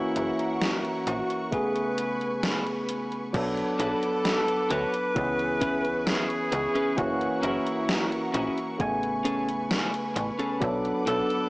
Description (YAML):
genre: vaporwave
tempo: 66 BPM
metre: 4/4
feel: straight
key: B dorian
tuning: A4 = 440 Hz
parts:
  - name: breathy alto saxophone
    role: melody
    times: 0.0-11.5 s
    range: E4 to B4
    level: -30 LUFS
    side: equal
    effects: tape echo
  - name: barky tine electric piano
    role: accompaniment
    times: 0.0-11.5 s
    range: C#3 to G#5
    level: -29 LUFS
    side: equal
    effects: wide subtle chorus
  - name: clear symphonic string section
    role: sustained chords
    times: 0.0-11.5 s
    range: A#4 to D6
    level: -34 LUFS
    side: equal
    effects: vintage 12-bit sampler grit
  - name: slap-like FM bass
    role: bass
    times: 0.2-11.2 s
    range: F#1 to D2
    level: -34 LUFS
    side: equal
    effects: tube saturation
  - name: gated 80s digital drum machine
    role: drums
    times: 0.2-11.5 s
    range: crash cymbal, hi-hat, snare drum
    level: -31 LUFS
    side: equal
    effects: gated reverb, gated reverb snare, overdrive
  - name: electronic kick drum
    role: drums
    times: 1.5-10.8 s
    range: none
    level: -32 LUFS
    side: equal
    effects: overdrive
  - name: clean electric guitar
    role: riff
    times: 3.8-11.3 s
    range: C#4 to C#5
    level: -32 LUFS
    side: left 1 dB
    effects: analog chorus
room: moderate lush hall reverb, RT60 2.7 s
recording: small speaker sound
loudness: -25 LUFS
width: side -23 dB against mid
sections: 0.0-3.3 A section; 3.3-11.5 B section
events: none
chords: 0.0 F#7; 1.5 Amaj9; 3.3 Bm7; 5.2 C#m7; 7.0 F#7; 8.8 Amaj9; 10.6 Bm7